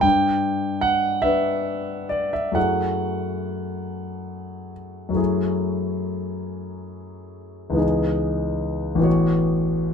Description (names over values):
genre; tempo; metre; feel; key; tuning
classical, impressionist solo piano; 46 BPM (dotted quarters); 6/8; uneven beats, rubato; unclear; A4 = 440 Hz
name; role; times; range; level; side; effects
warm concert grand piano; solo; 0.0-9.9 s; A1 to G5; -21 LUFS; left 1 dB; none
room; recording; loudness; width
light reverb; minimal, uncompressed stereo recording; -20 LUFS; side -6 dB against mid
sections
0.0-5.2 A section; 5.2-9.9 B section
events
none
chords
0.0 G; 2.6 F#m9; 7.8 C#m9; 9.1 A69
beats
| 0.04 1.25 | 2.55 3.85 | 5.18 6.50 | 7.82 9.06